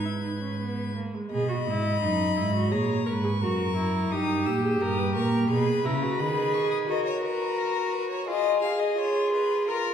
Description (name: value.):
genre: classical, baroque-style fugue for string quartet.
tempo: 86 BPM.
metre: 4/4.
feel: straight.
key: G# minor.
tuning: A4 = 439 Hz.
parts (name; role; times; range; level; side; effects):
rich violin; melody; 0.0-9.9 s; A#4 to G#6; -32 LUFS; left 8 dB; none.
dark violin; second line; 0.0-9.9 s; F4 to D#5; -32 LUFS; left 3 dB; none.
warm viola; accompaniment; 0.0-9.9 s; G#3 to B4; -28 LUFS; right 2 dB; none.
dark cello; bass; 0.0-6.9 s; F#2 to D#3; -28 LUFS; right 2 dB; none.
room: wet recital hall reverb, RT60 1.6 s.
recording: heard from further back in the room.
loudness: -24 LUFS.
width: side -8 dB against mid.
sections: 0.0-1.3 A section; 1.3-9.9 B section.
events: none.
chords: 0.0 G#m; 2.7 A#m7b5; 4.1 D#/G; 5.5 G#m/B; 6.9 D#m/F# (rootless); 8.3 Fm7b5.